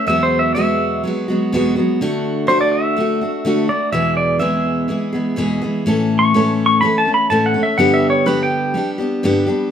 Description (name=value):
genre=country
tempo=124 BPM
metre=4/4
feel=straight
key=unclear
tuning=A4 = 440 Hz
part: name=pedal steel guitar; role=melody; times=0.0-8.9 s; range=B4 to C#6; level=-17 LUFS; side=equal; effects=none
part: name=picked steel-string acoustic guitar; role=accompaniment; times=0.0-9.7 s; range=E2 to A4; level=-17 LUFS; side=equal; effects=none
room=moderate large studio reverb, RT60 1.0 s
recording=minimal, uncompressed stereo recording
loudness=-14 LUFS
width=side -8 dB against mid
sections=0.0-9.7 A section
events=pedal steel guitar solo 0.0-9.7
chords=0.1 Eadd9; 2.0 D; 3.9 E; 5.9 A; 7.8 G